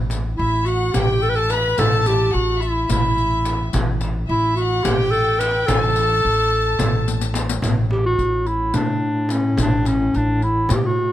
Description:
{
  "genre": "Turkish makam ensemble",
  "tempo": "215 BPM (eighths)",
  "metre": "7/8",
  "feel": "straight",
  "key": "A makam huseyni, A makam hicaz from 7.6 s",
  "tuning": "A4 = 439 Hz",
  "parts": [
    { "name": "upright bass", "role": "bass", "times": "0.0-11.1 s", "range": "A1 to A2", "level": "-22 LUFS", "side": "equal", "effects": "none" },
    { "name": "frame drum", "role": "percussion", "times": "0.1-10.8 s", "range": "none", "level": "-24 LUFS", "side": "right 1 dB", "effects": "none" },
    { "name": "riq", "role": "percussion", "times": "0.1-10.8 s", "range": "none", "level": "-31 LUFS", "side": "left 7 dB", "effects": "none" },
    { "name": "mellow clarinet", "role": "melody", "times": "0.4-11.1 s", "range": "C#4-20c to B4-27c", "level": "-20 LUFS", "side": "equal", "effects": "none" },
    { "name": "rich chamber violin section", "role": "second line", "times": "0.4-7.4 s", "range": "E5 to B5-30c", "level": "-26 LUFS", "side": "left 4 dB", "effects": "none" },
    { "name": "warm duduk", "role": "drone", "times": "7.6-11.1 s", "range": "A2", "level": "-28 LUFS", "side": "equal", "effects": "none" }
  ],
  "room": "light reverb",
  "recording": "close, detailed microphones",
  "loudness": "-17 LUFS",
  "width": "side -13 dB against mid",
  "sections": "0.0-7.6 A section; 7.6-11.1 B section",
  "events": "drum fill 7.1-7.6",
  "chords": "none",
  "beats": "0.11 0.39 0.67 0.94 1.22 1.50 | 1.78 2.06 2.34 2.62 2.90 3.17 3.45 | 3.73 4.01 4.29 4.57 4.85 5.12 5.40 | 5.68 5.96 6.24 6.52 6.80 7.08 7.35 | 7.63 7.91 8.19 8.47 8.75 9.03 9.31 | 9.59 9.86 10.14 10.42 10.70 10.98"
}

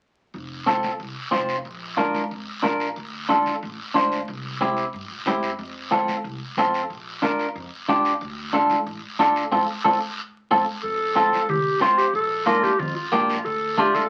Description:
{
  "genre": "latin, cumbia",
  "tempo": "183 BPM",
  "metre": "4/4",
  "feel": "straight",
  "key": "F major",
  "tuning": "A4 = 440 Hz",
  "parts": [
    { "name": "upright bass", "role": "bass", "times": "0.3-14.0 s", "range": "F1 to Bb2", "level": "-42 LUFS", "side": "equal", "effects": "none" },
    { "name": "guiro", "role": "percussion", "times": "0.3-14.1 s", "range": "none", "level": "-37 LUFS", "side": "equal", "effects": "none" },
    { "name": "clean electric guitar", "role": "accompaniment", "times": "0.7-14.0 s", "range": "A3 to C5", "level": "-22 LUFS", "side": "equal", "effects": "none" },
    { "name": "congas", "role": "percussion", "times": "0.7-14.1 s", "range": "none", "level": "-36 LUFS", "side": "equal", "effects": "none" },
    { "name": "growling clarinet", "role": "second line", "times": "10.8-14.1 s", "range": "F4 to Bb4", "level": "-25 LUFS", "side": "equal", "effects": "none" }
  ],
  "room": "moderate club reverb, RT60 0.5 s",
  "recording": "very old 78 rpm record, vinyl crackle",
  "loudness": "-23 LUFS",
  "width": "mono",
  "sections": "0.3-10.8 A section; 10.8-14.1 A section",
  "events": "drum fill 9.5-10.8; band accent 9.5-10.8",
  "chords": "0.3 F; 1.7 Bb; 3.0 Dm; 4.3 C; 5.6 F; 6.9 Bb; 8.2 Dm; 9.5 F; 12.1 Bb; 13.5 Dm",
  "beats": "| 0.34 0.67 1.00 1.33 | 1.66 1.98 2.31 2.64 | 2.97 3.30 3.62 3.95 | 4.28 4.61 4.94 5.26 | 5.59 5.92 6.25 6.58 | 6.90 7.23 7.56 7.89 | 8.21 8.54 8.87 9.20 | 9.53 9.85 10.18 10.51 | 10.84 11.16 11.49 11.82 | 12.14 12.47 12.80 13.13 | 13.46 13.78"
}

